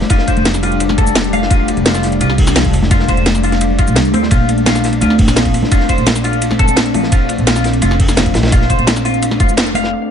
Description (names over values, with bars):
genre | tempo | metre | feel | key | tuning
liquid drum and bass | 171 BPM | 4/4 | straight | unclear | A4 = 440 Hz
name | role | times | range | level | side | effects
glassy FM pad | sustained chords | 0.0-10.1 s | F2 to D4 | -18 LUFS | left 2 dB | ensemble chorus, built-in reverb, sidechain pumping
crunchy breakbeat drum kit | drums | 0.0-10.0 s | hi-hat, ride cymbal, snare drum | -23 LUFS | equal | high-pass filter on cymbals, low-pass filter on cymbals, high-pass filter on hats, low-pass filter on hats, high-pass filter on snare, low-pass filter on snare, high-pass filter on room, low-pass filter on room
congas | percussion | 0.0-9.8 s | none | -24 LUFS | right 1 dB | none
clean electric guitar | arpeggios | 0.1-9.9 s | F3 to F5 | -19 LUFS | left 2 dB | wide subtle chorus, ping-pong delay
drum and bass drum kit | drums | 0.1-10.0 s | cabasa, hi-hat, snare drum | -17 LUFS | equal | low-pass filter on hats, low-pass filter on perc, low-pass filter on snare, low-pass filter on cymbals, low-pass filter on room
electronic kick drum | drums | 0.1-9.5 s | none | -13 LUFS | equal | none
upright bass | bass | 0.4-9.9 s | F1 to D2 | -17 LUFS | right 1 dB | none
room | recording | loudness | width
small room reverb | nothing above 10.8 kHz | -11 LUFS | side -8 dB against mid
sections
0.0-9.9 A section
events
drop 0.0-9.9; band accent 9.6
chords
0.0 F6; 4.3 Bbmaj9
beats
| 0.10 0.45 0.80 1.16 | 1.51 1.86 2.21 2.56 | 2.91 3.26 3.61 3.96 | 4.31 4.66 5.01 5.37 | 5.72 6.07 6.42 6.77 | 7.12 7.47 7.82 8.17 | 8.52 8.87 9.22 9.58 | 9.93